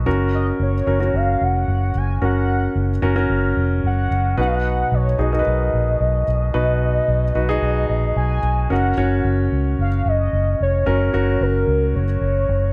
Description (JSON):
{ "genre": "piano-driven pop", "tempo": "111 BPM", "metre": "4/4", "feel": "straight", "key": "F# major", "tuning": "A4 = 440 Hz", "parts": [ { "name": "warm concert grand piano", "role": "accompaniment", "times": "0.0-12.7 s", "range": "B2 to C#5", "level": "-25 LUFS", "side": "equal", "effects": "none" }, { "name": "vintage muted fingered electric bass", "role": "bass", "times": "0.0-12.7 s", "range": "E#1 to C#2", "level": "-22 LUFS", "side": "equal", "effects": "none" }, { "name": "warm velvety synth lead", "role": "melody", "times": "0.3-12.7 s", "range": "A#4 to G#5", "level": "-26 LUFS", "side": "equal", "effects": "chorus" } ], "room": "light reverb, small room ambience", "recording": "none", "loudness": "-19 LUFS", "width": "mono", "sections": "0.0-8.7 A section; 8.7-12.7 B section", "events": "none", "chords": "0.1 F#; 4.4 B; 8.7 F#" }